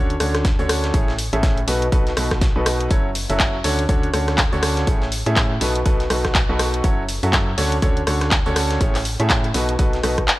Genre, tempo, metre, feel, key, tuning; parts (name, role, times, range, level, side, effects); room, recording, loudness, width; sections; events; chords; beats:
piano house; 122 BPM; 4/4; swing 59% on 16ths; A4 = 440 Hz
clear concert grand piano; riff; 0.0-10.2 s; A2 to E5; -22 LUFS; equal; sidechain pumping, tape echo
organ-like FM bass; bass; 0.0-10.3 s; F#1 to A2; -24 LUFS; equal; sidechain pumping
house drum kit; drums; 0.1-10.4 s; handclaps, hi-hat, rim click; -22 LUFS; equal; small room reverb
breakbeat sampler-style drum kit; drums; 0.2-10.4 s; hi-hat, snare drum; -33 LUFS; right 1 dB; high-pass filter on hats, small room reverb, high-pass filter on snare
electronic kick drum; drums; 0.4-10.3 s; -20 LUFS; equal; small room reverb
light reverb; dry, gritty hardware recording; -17 LUFS; side -18 dB against mid
0.0-10.4 A section
0.0 Dmaj7; 0.9 Amaj7; 1.7 B7; 2.9 F#m7; 3.6 Dmaj7; 4.9 Amaj7; 5.6 B7; 6.8 F#m7; 7.6 Dmaj7; 8.8 Amaj7; 9.5 B7
0.45 | 0.94 1.43 1.92 2.42 | 2.91 3.40 3.89 4.38 | 4.87 5.37 5.86 6.35 | 6.84 7.33 7.83 8.32 | 8.81 9.30 9.79 10.28